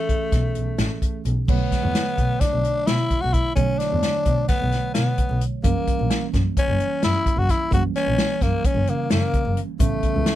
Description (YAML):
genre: progressive instrumental, band music in an uneven meter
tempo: 260 BPM (eighths)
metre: 9/8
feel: straight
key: B minor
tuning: A4 = 440 Hz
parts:
  - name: growling tenor saxophone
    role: melody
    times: 0.0-10.4 s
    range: A3 to F#4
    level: -24 LUFS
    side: left 3 dB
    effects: none
  - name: mellow tine electric piano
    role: accompaniment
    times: 0.0-10.4 s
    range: D3 to C#5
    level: -29 LUFS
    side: right 14 dB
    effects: none
  - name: unplugged drum kit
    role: drums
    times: 0.1-10.4 s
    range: crash cymbal, hi-hat, kick drum, snare drum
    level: -23 LUFS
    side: equal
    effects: none
  - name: dark double bass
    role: bass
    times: 0.3-10.2 s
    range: F#1 to B2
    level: -24 LUFS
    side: equal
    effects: none
  - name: mellow electric guitar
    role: second line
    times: 8.9-10.4 s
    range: C#3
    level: -29 LUFS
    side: right 1 dB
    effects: spring reverb, slapback echo
  - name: egg shaker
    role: percussion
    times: 9.8-10.0 s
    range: none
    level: -42 LUFS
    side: left 24 dB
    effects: none
room: little or no reverb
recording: none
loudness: -19 LUFS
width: side -13 dB against mid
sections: 0.0-1.5 A section; 1.5-10.4 B section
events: none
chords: 0.0 Amaj9; 1.5 Bm7; 5.6 F#7b9; 9.8 A9